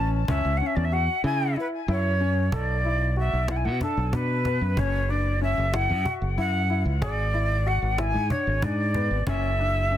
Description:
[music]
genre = progressive instrumental, band music in an uneven meter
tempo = 187 BPM (eighths)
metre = 7/8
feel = straight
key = F# minor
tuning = A4 = 442 Hz
[part]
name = breathy jazz flute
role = melody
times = 0.0-10.0 s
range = A4 to G#5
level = -27 LUFS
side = equal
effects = ping-pong delay
[part]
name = warm baby grand piano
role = arpeggios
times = 0.0-10.0 s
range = B3 to A4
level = -32 LUFS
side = left 4 dB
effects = none
[part]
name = modern bright fingered electric bass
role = bass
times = 0.0-10.0 s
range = F#1 to C#3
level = -25 LUFS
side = equal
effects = none
[part]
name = cajon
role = drums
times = 0.3-10.0 s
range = none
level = -30 LUFS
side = equal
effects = none
[sound]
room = little or no reverb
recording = dense, heavily limited modern master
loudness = -22 LUFS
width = side -11 dB against mid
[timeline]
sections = 0.0-2.5 A section; 2.5-10.0 B section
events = kick and snare drop out 1.3-2.5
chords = 0.3 C#m; 2.5 Bm; 4.8 F#5; 7.0 G#(b5, no3); 9.3 F#7(no3)

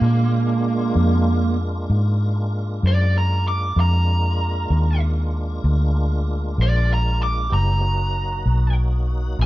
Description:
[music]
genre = slow blues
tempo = 64 BPM (dotted quarters)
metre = 12/8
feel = straight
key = unclear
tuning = A4 = 440 Hz
[part]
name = lead guitar through a small cranked amp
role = melody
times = 0.0-9.5 s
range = Bb3 to D6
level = -24 LUFS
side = right 4 dB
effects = overdrive
[part]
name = tonewheel organ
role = sustained chords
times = 0.0-9.5 s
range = Gb3 to G4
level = -30 LUFS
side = equal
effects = slow rotary speaker, overdrive, chorus vibrato
[part]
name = vintage muted fingered electric bass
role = bass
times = 0.0-9.5 s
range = Gb1 to Bb2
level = -18 LUFS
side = equal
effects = none
[sound]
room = little or no reverb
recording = rough home demo mix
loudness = -18 LUFS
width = side -16 dB against mid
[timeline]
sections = 0.0-9.5 A section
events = lead electric guitar solo 0.0-9.5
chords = 0.0 Bb7; 7.5 Ebm

